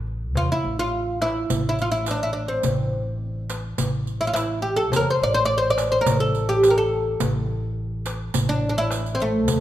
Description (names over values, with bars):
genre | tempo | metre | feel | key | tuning
Turkish makam ensemble | 105 BPM | 4/4 | straight | A makam kurdi | A4 = 440 Hz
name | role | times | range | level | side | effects
upright bass | bass | 0.0-9.6 s | A1 to E2 | -27 LUFS | equal | none
darbuka | percussion | 0.1-9.6 s | none | -28 LUFS | equal | none
oud | melody | 0.4-9.6 s | A3 to D5 | -21 LUFS | equal | none
riq | percussion | 1.5-9.6 s | none | -32 LUFS | right 7 dB | none
room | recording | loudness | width
light reverb | minimal, uncompressed stereo recording | -20 LUFS | side -12 dB against mid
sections
0.0-9.6 A section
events
none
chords
none